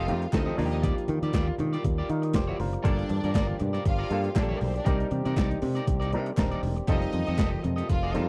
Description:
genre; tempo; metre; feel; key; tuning
disco; 119 BPM; 4/4; swing 56% on 16ths; C dorian; A4 = 441 Hz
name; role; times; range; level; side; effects
clear symphonic string section; second line; 0.0-8.3 s; Bb3 to F5; -38 LUFS; equal; tape echo
electric guitar at the edge of break-up; accompaniment; 0.0-8.2 s; Eb4 to Eb5; -40 LUFS; equal; spring reverb
warm French horn section; sustained chords; 0.0-8.3 s; Eb3 to D5; -38 LUFS; equal; none
modern bright fingered electric bass; bass; 0.0-8.3 s; Eb1 to Eb3; -31 LUFS; equal; none
overdriven clav; accompaniment; 0.1-8.3 s; F3 to F5; -35 LUFS; equal; auto-wah
boom bap sampler-style drum kit; drums; 0.1-8.3 s; hi-hat, kick drum, snare drum; -30 LUFS; equal; overdrive
group handclap; percussion; 0.3-7.5 s; none; -47 LUFS; equal; none
congas; percussion; 0.5-8.3 s; none; -40 LUFS; equal; none
room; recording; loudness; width
little or no reverb; dry, close 1970s-style studio recording; -27 LUFS; mono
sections
0.0-8.3 A section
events
clav fill 1.8-2.9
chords
0.0 F9; 0.6 Ebmaj9; 2.9 Gm7; 4.9 Cm9; 6.9 F9

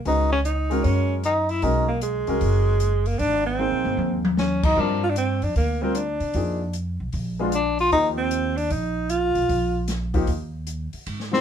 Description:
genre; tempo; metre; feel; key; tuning
jazz, small-group swing and bop; 152 BPM; 4/4; swing 66% on 8ths; unclear; A4 = 442 Hz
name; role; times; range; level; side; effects
upright bass; bass; 0.0-11.4 s; F#1 to C3; -26 LUFS; equal; none
warm tenor saxophone; melody; 0.1-1.9, 4.4-5.0, 7.5-8.1, 11.3-11.4 s; C4 to F4; -21 LUFS; left 2 dB; none
warm concert grand piano; accompaniment; 0.1-11.4 s; F3 to C5; -27 LUFS; left 2 dB; none
open jazz drum kit; drums; 0.1-11.4 s; crash cymbal, hi-hat, kick drum, ride cymbal, snare drum, toms; -27 LUFS; left 1 dB; none
clear alto saxophone; second line; 0.5-9.9 s; Ab3 to F4; -24 LUFS; right 3 dB; none
room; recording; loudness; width
moderate studio reverb, RT60 0.6 s; band playing live in one room; -20 LUFS; side -8 dB against mid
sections
0.0-11.1 A section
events
drum fill 3.6-4.4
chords
0.1 Dbsus2; 0.8 Gbadd9; 1.6 B5; 3.2 Abadd9; 4.8 Gm7; 6.3 Fm7; 7.1 Bb7b9; 7.9 Ebadd9; 9.5 Bb5; 10.3 N.C.

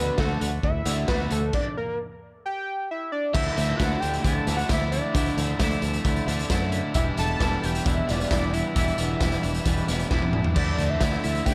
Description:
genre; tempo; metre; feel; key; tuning
indie rock; 133 BPM; 4/4; straight; unclear; A4 = 438 Hz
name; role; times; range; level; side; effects
fat analog lead; melody; 0.0-11.5 s; A4 to A5; -32 LUFS; equal; analog delay
overdriven electric guitar; riff; 0.0-11.5 s; D3 to F#4; -33 LUFS; equal; analog chorus
twangy electric guitar; riff; 0.0-11.5 s; E2 to F#4; -35 LUFS; equal; none
fingered electric bass; bass; 0.0-11.5 s; E1 to F#2; -30 LUFS; equal; none
raw garage drum kit; drums; 0.2-11.5 s; crash cymbal, hi-hat, kick drum, snare drum, toms; -29 LUFS; equal; none
overdriven tonewheel organ; sustained chords; 3.4-11.5 s; D4 to A5; -43 LUFS; equal; none
room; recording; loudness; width
studio reverb; none; -25 LUFS; mono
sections
0.0-3.3 A section; 3.3-11.5 B section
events
analog synth lead solo 0.0-3.3; stop 1.5-3.3; drum fill 10.1-10.6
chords
0.0 D; 1.5 N.C.; 3.3 Dsus2; 7.0 Em7; 10.6 Dsus2

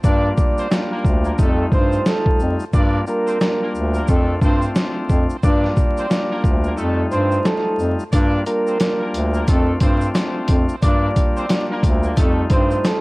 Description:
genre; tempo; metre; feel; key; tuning
hip hop, boom-bap hip-hop; 89 BPM; 4/4; swing 60% on 16ths; G minor; A4 = 440 Hz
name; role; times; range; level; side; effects
vibraphone with medium mallets; melody; 0.0-13.0 s; A4 to D6; -24 LUFS; right 1 dB; auto-pan, high-pass filter, low-pass filter, plate reverb, ping-pong delay
bright tonewheel organ; accompaniment; 0.0-13.0 s; G3 to F4; -24 LUFS; left 1 dB; cassette tape, high-pass filter, low-pass filter, plate reverb
brilliant trumpet section; stabs; 0.0-12.8 s; A3 to D5; -30 LUFS; right 1 dB; high-pass filter, low-pass filter, plate reverb, ping-pong delay
mellow bass clarinet; bass; 0.0-12.8 s; D2 to G2; -20 LUFS; equal; none
trip hop sampler-style drum kit; drums; 0.0-13.0 s; hi-hat, kick drum, snare drum; -18 LUFS; equal; none
tube shaker; percussion; 0.0-13.0 s; none; -45 LUFS; right 2 dB; none
room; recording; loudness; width
light reverb; worn, warbling old tape, cassette tape, vinyl crackle, warbly pitch drift; -16 LUFS; side -23 dB against mid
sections
0.0-13.0 A section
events
break 0.0-8.1; kick muted 6.8-8.1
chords
0.0 Gm7; 1.4 F9; 2.7 Gm7; 4.1 Dm7/F; 5.4 Gm7; 6.8 F9; 8.1 Gm7; 9.5 Dm7/F; 10.8 Gm7; 12.2 F9

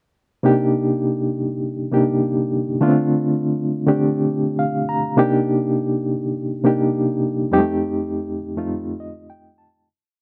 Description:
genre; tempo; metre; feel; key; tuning
soul; 102 BPM; 4/4; swing 58% on 16ths; C dorian; A4 = 440 Hz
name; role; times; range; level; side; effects
reed electric piano; solo; 0.4-9.9 s; F2 to Bb5; -20 LUFS; equal; fast tremolo
room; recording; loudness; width
little or no reverb; dry, close 1970s-style studio recording; -20 LUFS; mono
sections
0.5-9.9 verse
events
reed electric piano fill 4.3-5.2, 8.7-9.9; fade-out 7.5-9.9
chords
0.5 Cm7; 2.8 G7sus4/D; 5.2 Cm7; 7.5 F9

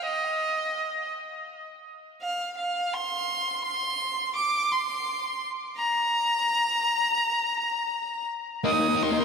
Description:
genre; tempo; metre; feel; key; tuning
rock; 84 BPM; 4/4; straight; C minor; A4 = 442 Hz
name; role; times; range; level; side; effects
rich violin; melody; 0.0-9.2 s; Eb5 to Eb6; -25 LUFS; equal; ping-pong delay
fuzz guitar; riff; 8.6-9.2 s; Bb3 to Eb4; -22 LUFS; left 3 dB; distortion
room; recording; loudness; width
wet church reverb, RT60 4.0 s; dreamy mix soaked in reverb; -24 LUFS; side -5 dB against mid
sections
0.0-8.7 A section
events
none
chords
0.0 N.C.; 8.7 Cm7

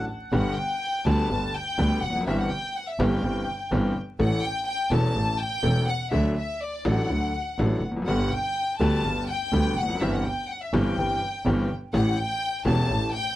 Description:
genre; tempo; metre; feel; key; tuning
tango; 124 BPM; 4/4; rubato; G major; A4 = 440 Hz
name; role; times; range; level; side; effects
warm chamber violin section; second line; 0.0-13.4 s; D5 to A5; -29 LUFS; left 2 dB; none
bright upright piano; accompaniment; 0.0-13.1 s; E1 to A4; -27 LUFS; left 1 dB; none
clear double bass; bass; 0.0-13.1 s; E1 to D2; -26 LUFS; right 1 dB; tube saturation
room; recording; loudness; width
little or no reverb; dry, gritty hardware recording, vinyl crackle; -23 LUFS; side -15 dB against mid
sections
0.3-13.4 A section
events
violin section solo 0.3-13.4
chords
0.3 G; 2.3 C/G; 4.2 A; 6.1 D; 8.1 G; 10.0 C/G; 11.9 A7

